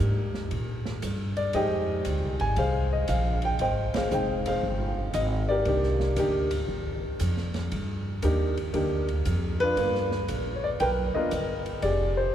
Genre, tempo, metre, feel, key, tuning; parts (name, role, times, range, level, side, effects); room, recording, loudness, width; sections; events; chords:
jazz piano trio; 117 BPM; 4/4; swing 67% on 8ths; C minor; A4 = 441 Hz
warm grand piano; melody; 0.0-12.3 s; Ab3 to Ab5; -27 LUFS; left 1 dB
upright bass; bass; 0.0-12.3 s; F1 to Bb2; -28 LUFS; equal
open jazz drum kit; drums; 0.3-12.0 s; hi-hat, ride cymbal, snare drum; -38 LUFS; right 2 dB
wet cathedral reverb, RT60 5.8 s; recorded in a church or concert hall; -25 LUFS; side -10 dB against mid
0.0-12.3 A section
band accent 3.9
0.0 Cm9 (rootless); 1.5 Fm9; 5.7 Cm9; 9.8 G7#9; 11.8 Fmadd9